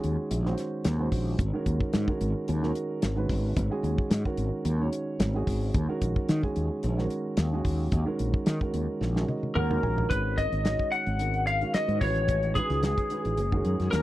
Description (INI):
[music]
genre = electric jazz fusion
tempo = 110 BPM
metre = 4/4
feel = swing 53% on 16ths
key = G# minor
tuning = A4 = 439 Hz
[part]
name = dark grand piano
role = accompaniment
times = 0.0-14.0 s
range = D#3 to G#5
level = -32 LUFS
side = right 2 dB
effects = none
[part]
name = fretless electric bass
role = bass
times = 0.0-14.0 s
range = F#1 to D#3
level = -28 LUFS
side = equal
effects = analog chorus
[part]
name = damped 70s drum kit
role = drums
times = 0.0-14.0 s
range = hi-hat, kick drum, snare drum, toms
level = -29 LUFS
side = equal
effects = none
[part]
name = lightly driven lead guitar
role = melody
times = 9.6-14.0 s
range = G#4 to F#5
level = -29 LUFS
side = equal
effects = none
[part]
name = mellow concert flute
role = second line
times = 9.6-14.0 s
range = G#4 to F#5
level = -34 LUFS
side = left 3 dB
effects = none
[sound]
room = little or no reverb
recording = dry, close 1970s-style studio recording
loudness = -25 LUFS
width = side -15 dB against mid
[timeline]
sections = 0.0-10.1 A section; 10.1-14.0 B section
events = drum fill 9.0-10.1; grand piano fill 9.0-10.1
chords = 0.0 D#m7; 1.4 G#7sus2; 5.7 D#m7; 10.1 G#5; 12.0 Amaj9; 13.4 F#69